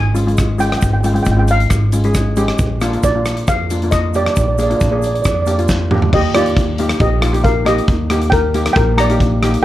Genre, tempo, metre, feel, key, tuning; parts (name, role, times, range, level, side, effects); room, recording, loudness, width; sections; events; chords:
calypso; 136 BPM; 4/4; straight; Eb major; A4 = 436 Hz
steel pan; melody; 0.0-9.6 s; F4 to Bb5; -18 LUFS; equal
upright bass; bass; 0.0-9.5 s; Ab1 to F2; -18 LUFS; equal
steel pan; accompaniment; 0.1-9.6 s; Ab3 to Ab4; -19 LUFS; left 1 dB
big rock drum kit; drums; 0.2-9.6 s; crash cymbal, hi-hat, kick drum, rim click, snare drum, toms; -18 LUFS; equal
tube shaker; percussion; 0.2-5.8 s; -33 LUFS; right 8 dB
light reverb; dark, warm production; -12 LUFS; side -14 dB against mid
0.0-6.1 A section; 6.1-9.6 B section
drum fill 5.7-6.1
0.0 Db/Ab; 2.6 Bb; 6.1 Eb